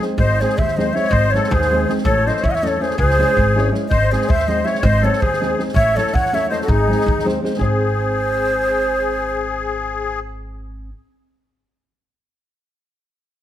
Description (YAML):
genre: balkan folk, Balkan wedding band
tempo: 325 BPM (eighths)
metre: 5/8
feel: straight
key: unclear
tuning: A4 = 441 Hz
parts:
  - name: musette accordion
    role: second line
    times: 0.0-10.2 s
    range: D#4 to D#5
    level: -22 LUFS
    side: left 6 dB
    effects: none
  - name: nylon-string guitar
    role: accompaniment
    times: 0.0-10.9 s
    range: G#3 to C#5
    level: -24 LUFS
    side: equal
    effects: none
  - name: unplugged drum kit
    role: percussion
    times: 0.0-7.8 s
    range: kick drum, snare drum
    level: -23 LUFS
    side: equal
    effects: none
  - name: breathy mellow ney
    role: melody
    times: 0.2-10.2 s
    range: G#4 to F#5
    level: -20 LUFS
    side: right 1 dB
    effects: none
  - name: upright bass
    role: bass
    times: 0.2-10.9 s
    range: G#1 to E2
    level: -21 LUFS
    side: equal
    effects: none
room: light reverb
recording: close, detailed microphones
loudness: -15 LUFS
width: side -12 dB against mid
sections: 0.2-7.6 A section; 7.6-9.4 B section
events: none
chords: 0.2 G#; 2.1 A; 3.0 C#m; 3.9 G#; 5.8 A; 6.7 G#